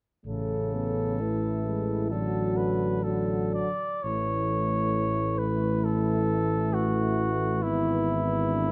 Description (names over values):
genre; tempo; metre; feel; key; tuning
classical, hymn-like piece for brass band; 57-68 BPM; 4/4; rubato; A major; A4 = 438 Hz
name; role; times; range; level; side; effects
warm flugelhorn; melody; 0.3-8.7 s; E4 to D5; -33 LUFS; equal; none
mellow French horn section; second line; 0.3-8.7 s; D4 to A4; -35 LUFS; equal; none
clear euphonium; accompaniment; 0.3-8.7 s; C#3 to E3; -37 LUFS; equal; none
dark euphonium; accompaniment; 0.3-8.7 s; F#3 to B3; -36 LUFS; equal; none
mellow tuba; bass; 0.3-8.7 s; G#1 to A1; -32 LUFS; equal; none
room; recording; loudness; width
light reverb; close, detailed microphones; -27 LUFS; mono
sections
0.3-4.0 A section; 4.0-8.7 B section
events
none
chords
0.3 A; 2.1 D/A; 4.0 A; 7.6 E/G#